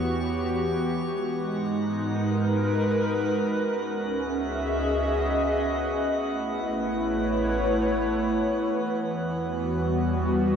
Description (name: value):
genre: ambient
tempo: 71 BPM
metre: 3/4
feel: straight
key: unclear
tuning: A4 = 441 Hz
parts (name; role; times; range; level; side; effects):
- airy breathy pad; sustained chords; 0.0-10.6 s; E3 to E5; -24 LUFS; equal; chorus
- deep rumbling drone; bass; 0.0-10.6 s; A1 to G#2; -33 LUFS; equal; built-in reverb
- hand-pumped harmonium; drone; 0.0-10.6 s; B3; -36 LUFS; right 1 dB; stereo widening
- drifting glass-harmonics texture; texture; 0.0-10.6 s; F#4 to C#6; -40 LUFS; right 1 dB; chorus, built-in reverb
room: wet huge ambient reverb, RT60 6.9 s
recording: dreamy mix soaked in reverb, cassette tape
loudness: -24 LUFS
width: side -7 dB against mid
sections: 0.0-10.6 A section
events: fade-out on synth texture 0.0-10.6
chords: 0.0 Em; 1.1 G#madd9; 3.7 C#m7; 6.2 Aadd9; 8.7 Em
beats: 0.23 | 1.10 1.97 2.82 | 3.67 4.52 5.36 | 6.20 7.04 7.89 | 8.74 9.60 10.47